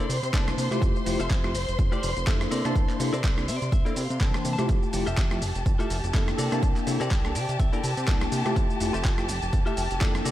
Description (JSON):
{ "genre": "filtered disco house", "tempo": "124 BPM", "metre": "4/4", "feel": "swing 57% on 16ths", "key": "F major", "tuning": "A4 = 438 Hz", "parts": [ { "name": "bell-like tine electric piano", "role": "accompaniment", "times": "0.0-10.3 s", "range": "E3 to A5", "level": "-31 LUFS", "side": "left 1 dB", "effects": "phaser, sidechain pumping" }, { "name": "dark studio violin section", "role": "sustained chords", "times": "0.0-10.3 s", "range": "G4 to C6", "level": "-33 LUFS", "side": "left 1 dB", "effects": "sidechain pumping" }, { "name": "direct-recorded clean electric guitar", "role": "riff", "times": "0.0-10.3 s", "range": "E4 to A5", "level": "-36 LUFS", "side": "left 4 dB", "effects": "vintage 12-bit sampler grit, sidechain pumping" }, { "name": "fat analog bass", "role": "bass", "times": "0.0-10.3 s", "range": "F1 to C3", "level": "-30 LUFS", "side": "equal", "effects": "sidechain pumping" }, { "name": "dusty soul sampler-style drum kit", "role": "drums", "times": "0.0-10.3 s", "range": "handclaps, hi-hat, rim click, shaker", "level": "-34 LUFS", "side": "right 1 dB", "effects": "overdrive, sidechain pumping on hats, studio reverb, sidechain pumping on perc, sidechain pumping on cymbals" }, { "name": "electronic kick drum", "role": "drums", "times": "0.3-10.1 s", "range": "none", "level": "-25 LUFS", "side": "equal", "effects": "studio reverb" } ], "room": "light reverb", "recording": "none", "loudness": "-23 LUFS", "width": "side -13 dB against mid", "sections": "0.0-10.3 A section", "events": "clean electric guitar fill 3.2-4.7, 7.1-8.6", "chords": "0.0 C13; 0.8 Fmaj9; 2.5 C13; 4.7 Fmaj9; 6.4 C13; 8.6 Fmaj9" }